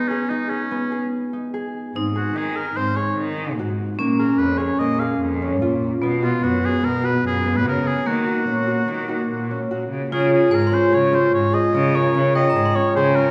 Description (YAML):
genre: contemporary instrumental, chamber music in an uneven meter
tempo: 147 BPM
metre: 5/4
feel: straight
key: Eb minor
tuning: A4 = 438 Hz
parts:
  - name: clear oboe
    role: melody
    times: 0.0-13.3 s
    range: Db4 to F5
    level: -26 LUFS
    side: equal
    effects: none
  - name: vibraphone with hard mallets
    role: second line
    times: 0.0-13.3 s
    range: Bb3 to F4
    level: -25 LUFS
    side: equal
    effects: none
  - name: concert harp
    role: arpeggios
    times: 0.0-13.3 s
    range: Bb3 to Bb4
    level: -27 LUFS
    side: equal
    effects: none
  - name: clear cello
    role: bass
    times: 1.9-13.3 s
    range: F2 to Eb3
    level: -26 LUFS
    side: equal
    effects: none
  - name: glockenspiel with brass mallets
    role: texture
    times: 10.5-13.3 s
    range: G5 to C6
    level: -34 LUFS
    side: equal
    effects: none
room: wet recital hall reverb, RT60 1.6 s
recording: recorded in a church or concert hall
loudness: -20 LUFS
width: mono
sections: 0.0-10.1 A section; 10.1-13.3 B section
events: none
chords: 0.0 Abm; 1.9 Ab7; 4.0 Bbm7; 6.0 B5; 8.1 Ebm7; 10.1 Db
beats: 0.31 0.72 1.13 1.54 | 1.95 2.35 2.76 3.17 3.58 | 3.99 4.40 4.80 5.21 5.62 | 6.03 6.44 6.84 7.25 7.66 | 8.07 8.48 8.88 9.29 9.70 | 10.11 10.51 10.92 11.33 11.73 | 12.14 12.55 12.95